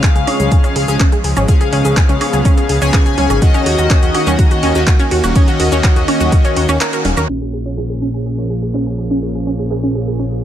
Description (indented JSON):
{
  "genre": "progressive house",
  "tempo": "124 BPM",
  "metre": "4/4",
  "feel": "straight",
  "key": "Eb minor",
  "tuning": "A4 = 441 Hz",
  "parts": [
    { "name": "supersaw pad", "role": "sustained chords", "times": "0.0-10.4 s", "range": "Eb3 to Ab4", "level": "-22 LUFS", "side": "right 2 dB", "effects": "vintage 12-bit sampler grit, sidechain pumping, low-pass filter" },
    { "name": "analog pluck", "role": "arpeggios", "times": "0.0-10.4 s", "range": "Db4 to Bb4", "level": "-19 LUFS", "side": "right 1 dB", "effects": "chorus, vintage 12-bit sampler grit, sidechain pumping, digital delay" },
    { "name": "chorused polysynth", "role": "stabs", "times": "0.0-6.7 s", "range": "Db3 to Ab5", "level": "-19 LUFS", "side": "left 3 dB", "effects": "sidechain pumping, digital delay" },
    { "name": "deep house drum kit", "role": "drums", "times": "0.0-9.8 s", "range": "cabasa, handclaps, hi-hat, woodblock", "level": "-22 LUFS", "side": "right 1 dB", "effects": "sidechain pumping on hats, low-pass filter on hats, studio reverb, low-pass filter on snare, sidechain pumping on perc, low-pass filter on perc" },
    { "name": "electronic kick drum", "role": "drums", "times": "0.0-6.4 s", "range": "none", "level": "-11 LUFS", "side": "equal", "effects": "studio reverb" },
    { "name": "fat analog bass", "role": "bass", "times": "0.2-10.4 s", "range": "Eb1 to Eb2", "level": "-18 LUFS", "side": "equal", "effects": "tube saturation, sidechain pumping" },
    { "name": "congas", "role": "percussion", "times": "0.3-7.3 s", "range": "none", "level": "-26 LUFS", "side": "equal", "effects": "none" }
  ],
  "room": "little or no reverb",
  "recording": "low-pass filter",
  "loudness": "-12 LUFS",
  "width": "side -11 dB against mid",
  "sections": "0.0-7.3 A section; 7.3-10.4 B section",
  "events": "filter sweep on synth arpeggio sound 0.0-7.3, 7.3-10.4; filter sweep on supersaw synth 0.0-7.3; break 6.8-7.3; band accent 6.8; filter sweep 7.3-10.4",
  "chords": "0.0 Db; 3.4 Ebm7; 7.3 Bbm7"
}